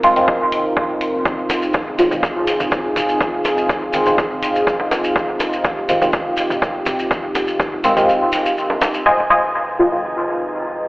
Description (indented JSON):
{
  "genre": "dub techno",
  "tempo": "123 BPM",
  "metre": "4/4",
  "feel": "straight",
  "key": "F minor",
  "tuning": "A4 = 440 Hz",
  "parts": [
    { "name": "dark analog pad", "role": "sustained chords", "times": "0.0-10.9 s", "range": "C4 to Bb4", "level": "-21 LUFS", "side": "equal", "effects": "chorus, sidechain pumping" },
    { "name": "deep mellow chord stab", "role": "stabs", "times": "0.0-10.0 s", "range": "Eb3 to F4", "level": "-20 LUFS", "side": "equal", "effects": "chorus, phaser, sidechain pumping, dub echo" },
    { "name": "soft dub sub bass", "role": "bass", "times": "0.0-10.9 s", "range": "F1", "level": "-43 LUFS", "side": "equal", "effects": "sidechain pumping" },
    { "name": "electronic hi-hat", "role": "drums", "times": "0.0-8.9 s", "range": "none", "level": "-29 LUFS", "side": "equal", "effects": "low-pass filter on hats" },
    { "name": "electronic kick drum", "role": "drums", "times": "0.3-7.7 s", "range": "none", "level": "-20 LUFS", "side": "equal", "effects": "none" },
    { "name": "maracas", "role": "percussion", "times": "1.3-9.0 s", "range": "none", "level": "-28 LUFS", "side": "left 1 dB", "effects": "none" },
    { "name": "electronic bongos and toms", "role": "percussion", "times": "1.5-8.9 s", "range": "none", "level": "-28 LUFS", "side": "equal", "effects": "none" },
    { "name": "filtered dub chord stab", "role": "riff", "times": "9.1-9.4 s", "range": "F4 to Ab5", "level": "-19 LUFS", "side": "equal", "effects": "chorus, sidechain pumping, dub echo" },
    { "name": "metallic inharmonic drone", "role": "texture", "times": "9.5-10.9 s", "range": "Eb4", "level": "-28 LUFS", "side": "equal", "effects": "chorus, built-in reverb, sidechain pumping" }
  ],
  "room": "moderate huge ambient reverb, RT60 7.9 s",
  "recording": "played on a big sound system in a bare room, stone room reverb, telephone sound",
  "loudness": "-15 LUFS",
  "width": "side -22 dB against mid",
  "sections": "0.0-9.1 A section; 9.1-10.9 B section",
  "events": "none",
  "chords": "0.0 Fm7"
}